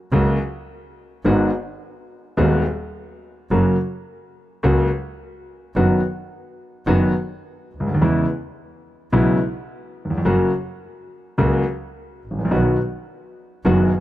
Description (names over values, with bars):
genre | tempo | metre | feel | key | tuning
tango | 106 BPM | 4/4 | rubato | B major | A4 = 437 Hz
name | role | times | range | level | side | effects
warm concert grand piano | accompaniment | 0.1-13.9 s | D#1 to F#4 | -19 LUFS | equal | none
clear double bass | bass | 0.1-13.9 s | F#1 to E2 | -22 LUFS | right 1 dB | none
room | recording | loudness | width
little or no reverb | dry, close 1970s-style studio recording | -18 LUFS | side -14 dB against mid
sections
0.0-14.0 A section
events
none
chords
0.0 F#; 1.2 G#m7; 3.5 F#; 5.8 B/F#; 8.0 E6; 10.3 F#; 12.5 B